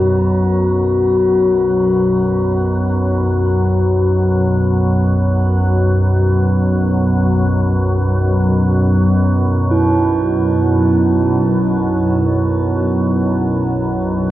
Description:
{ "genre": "world meditative, free-time meditation music", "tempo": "free time", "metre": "none", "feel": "none", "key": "unclear", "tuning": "A4 = 443 Hz", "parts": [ { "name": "soft additive organ-like pad", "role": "drone", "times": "0.0-14.3 s", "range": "B1 to F#2", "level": "-14 LUFS", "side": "equal", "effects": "ensemble chorus, built-in reverb" }, { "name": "bronze singing bowl", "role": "texture", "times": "0.0-14.3 s", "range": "E4 to F#4", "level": "-19 LUFS", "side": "equal", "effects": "none" } ], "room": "wet cathedral reverb, RT60 5.5 s", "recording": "worn, warbling old tape, cassette tape, warbly pitch drift", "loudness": "-13 LUFS", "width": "side -14 dB against mid", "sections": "0.0-14.3 A section", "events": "none", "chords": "none", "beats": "free time" }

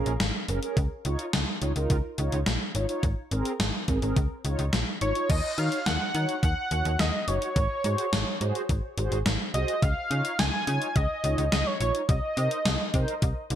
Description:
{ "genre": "synth-pop", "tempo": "106 BPM", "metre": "4/4", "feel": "straight", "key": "unclear", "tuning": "A4 = 440 Hz", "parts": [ { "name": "octave-doubled lead", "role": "melody", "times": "0.0-0.5, 5.0-13.2 s", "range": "Db5 to Ab5", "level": "-30 LUFS", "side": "equal", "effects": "chorus, digital delay" }, { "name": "mellow synth brass", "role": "accompaniment", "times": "0.0-13.6 s", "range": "C4 to Db5", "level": "-33 LUFS", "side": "right 2 dB", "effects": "chorus" }, { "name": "slap-like FM bass", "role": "bass", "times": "0.0-13.6 s", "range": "Gb1 to Eb3", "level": "-28 LUFS", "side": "equal", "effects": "none" }, { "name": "gated 80s digital drum machine", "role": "drums", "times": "0.1-13.6 s", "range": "crash cymbal, hi-hat, kick drum, snare drum", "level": "-28 LUFS", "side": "equal", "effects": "gated reverb, gated reverb snare, overdrive" } ], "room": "moderate plate reverb, RT60 1.3 s, digital ambience", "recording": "bright 1980s-style digital production", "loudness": "-24 LUFS", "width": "side -10 dB against mid", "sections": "0.0-5.3 A section; 5.3-13.6 B section", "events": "none", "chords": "0.0 Bbm7; 0.8 Dbadd9; 3.0 Abadd9; 4.2 Dbadd9; 5.3 Ebm7; 7.6 Ab7; 9.8 Dbadd9; 12.1 Cm7", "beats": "0.20 | 0.77 1.33 1.90 2.47 | 3.03 3.60 4.16 4.73 | 5.30 5.86 6.43 6.99 | 7.56 8.13 8.69 9.26 | 9.82 10.39 10.96 11.52 | 12.09 12.65 13.22" }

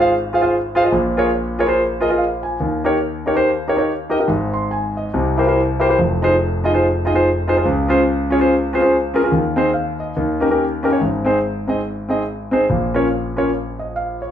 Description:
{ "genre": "gospel", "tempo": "143 BPM", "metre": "4/4", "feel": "swing 60% on 8ths", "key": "Ab major", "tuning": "A4 = 440 Hz", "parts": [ { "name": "warm concert grand piano", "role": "solo", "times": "0.0-14.3 s", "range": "F1 to C6", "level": "-16 LUFS", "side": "equal", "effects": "none" } ], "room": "wet large studio reverb, RT60 0.9 s", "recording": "band playing live in one room", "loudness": "-16 LUFS", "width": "side -10 dB against mid", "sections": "0.0-11.0 A section; 11.0-14.3 B section", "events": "none", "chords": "0.0 Fm/Ab; 0.9 Bb7(no3); 2.6 Eb7; 4.3 N.C.; 5.1 C7; 6.0 Fm7; 7.6 Dbmaj7; 9.3 Ab/Eb; 10.2 Eb7; 11.0 Ab; 12.7 Bbm", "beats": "0.09 0.51 | 0.93 1.34 1.76 2.18 | 2.60 3.02 3.44 3.86 | 4.28 4.70 5.12 5.54 | 5.96 6.38 6.80 7.22 | 7.64 8.06 8.48 8.90 | 9.32 9.74 10.17 10.59 | 11.01 11.43 11.85 12.27 | 12.70 13.12 13.54 13.96" }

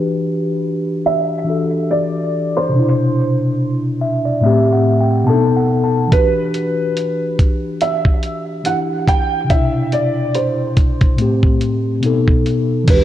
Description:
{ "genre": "lo-fi hip hop", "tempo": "71 BPM", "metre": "4/4", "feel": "swing 58% on 16ths", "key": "E minor", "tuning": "A4 = 441 Hz", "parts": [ { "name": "felt-muted upright piano", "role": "melody", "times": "0.0-13.0 s", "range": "B4 to G5", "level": "-20 LUFS", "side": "right 2 dB", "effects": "wide subtle chorus, low-pass filter, analog delay" }, { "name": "mellow tine electric piano", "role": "accompaniment", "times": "0.0-13.0 s", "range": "A2 to A5", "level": "-16 LUFS", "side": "left 1 dB", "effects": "slow stereo tremolo, cassette tape, low-pass filter" }, { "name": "dusty soul sampler-style drum kit", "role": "drums", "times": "6.1-13.0 s", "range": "crash cymbal, hi-hat, kick drum", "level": "-14 LUFS", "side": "equal", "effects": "none" }, { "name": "woody fretless electric bass", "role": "bass", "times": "12.9-13.0 s", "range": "E1", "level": "-17 LUFS", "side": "equal", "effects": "lush chorus" } ], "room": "moderate lush hall reverb, RT60 2.8 s", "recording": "dreamy mix soaked in reverb, cassette tape", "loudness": "-14 LUFS", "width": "side -12 dB against mid", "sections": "0.0-12.9 A section", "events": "filter sweep 0.0-12.9; tine electric piano fill 3.6-6.1", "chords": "0.0 Em9; 2.7 Cmaj9; 4.4 Am7; 5.3 B7; 6.1 Em9; 9.5 Cmaj9; 11.2 Am7; 12.0 B7", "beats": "0.21 1.05 1.90 | 2.74 3.59 4.43 5.28 | 6.12 6.97 7.81 8.66 | 9.50 10.35 11.19 12.04 | 12.88" }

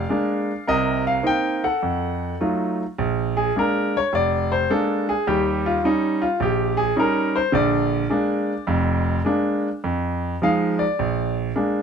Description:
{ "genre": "solo jazz", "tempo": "105 BPM", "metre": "4/4", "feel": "swing 69% on 8ths, rubato", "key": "Bb mixolydian", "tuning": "A4 = 440 Hz", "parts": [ { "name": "bright grand piano", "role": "solo", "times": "0.0-11.8 s", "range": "F1 to G5", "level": "-19 LUFS", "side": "equal", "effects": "none" } ], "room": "light reverb", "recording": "none", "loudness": "-19 LUFS", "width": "side -6 dB against mid", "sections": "0.0-3.0 A section; 3.0-11.8 B section", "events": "grand piano solo 3.0-11.8", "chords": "0.0 Bb7; 0.7 Cm7; 1.8 F7b9; 3.0 Bb7; 5.3 Eb7; 7.5 Bb7; 9.8 Fm7; 11.0 Bb7", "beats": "0.09 | 0.66 1.23 1.80 2.39 | 2.97 3.55 4.13 4.70 | 5.27 5.84 6.40 6.97 | 7.54 8.11 8.69 9.26 | 9.84 10.41 10.98 11.57" }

